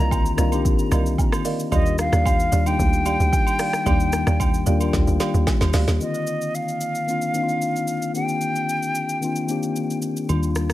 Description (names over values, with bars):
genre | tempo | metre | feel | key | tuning
amapiano | 112 BPM | 4/4 | straight | C minor | A4 = 440 Hz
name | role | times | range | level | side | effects
hollow concert flute | melody | 0.0-10.0 s | Eb5 to Bb5 | -26 LUFS | equal | digital delay
mellow tine electric piano | accompaniment | 0.0-10.7 s | D3 to G4 | -24 LUFS | left 4 dB | wide subtle chorus
folk marimba with medium mallets | stabs | 0.0-6.0 s | G4 to F5 | -31 LUFS | right 6 dB | digital delay
tight log drum bass | bass | 0.0-6.0 s | C2 to Eb2 | -21 LUFS | right 1 dB | none
afro-pop drum kit | drums | 0.1-10.7 s | hi-hat, kick drum, rim click, shaker, snare drum | -24 LUFS | equal | none
agogo bells and woodblock | percussion | 0.1-5.7, 10.3-10.4 s | none | -34 LUFS | right 8 dB | none
plucky analog bass | bass | 10.3-10.7 s | Eb2 | -22 LUFS | equal | none
room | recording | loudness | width
light reverb | none | -19 LUFS | side -15 dB against mid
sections
0.0-6.0 A section; 6.0-10.7 B section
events
drop 0.0-6.0; drum fill 4.9-6.0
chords
0.0 Cm11; 1.7 Ebmaj9; 6.0 Cm11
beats
0.11 0.65 1.18 | 1.72 2.26 2.79 3.33 | 3.86 4.40 4.93 5.47 | 6.01 6.54 7.08 7.61 | 8.15 8.68 9.22 9.76 | 10.29